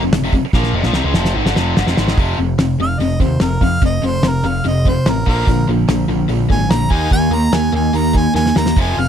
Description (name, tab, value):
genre	classic rock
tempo	146 BPM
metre	4/4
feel	straight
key	F dorian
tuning	A4 = 440 Hz
part	biting overdriven guitar	riff	0.0-9.1 s	F2 to Eb4	-20 LUFS	left 12 dB	none
part	tight distorted guitar	riff	0.0-9.1 s	F2 to Eb4	-21 LUFS	right 14 dB	distortion
part	growling picked electric bass	bass	0.0-9.1 s	F1 to F2	-19 LUFS	right 1 dB	overdrive
part	damped 70s drum kit	drums	0.1-8.9 s	hi-hat, kick drum, snare drum	-16 LUFS	equal	none
part	clear harmonica	melody	2.8-9.1 s	Bb4 to Bb5	-21 LUFS	right 1 dB	tape echo
room	little or no reverb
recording	dry, close 1970s-style studio recording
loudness	-13 LUFS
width	side -8 dB against mid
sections	0.0-2.2 A section; 2.2-9.1 B section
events	drum fill 0.5-2.2, 8.4-8.8; harmonica solo 2.2-9.1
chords	0.0 Fm; 2.2 F5; 5.3 Bb; 6.9 Eb5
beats	0.11 | 0.53 0.94 1.35 1.76 | 2.17 2.59 3.00 3.41 | 3.83 4.24 4.65 5.06 | 5.47 5.89 6.30 6.71 | 7.12 7.54 7.95 8.36 | 8.77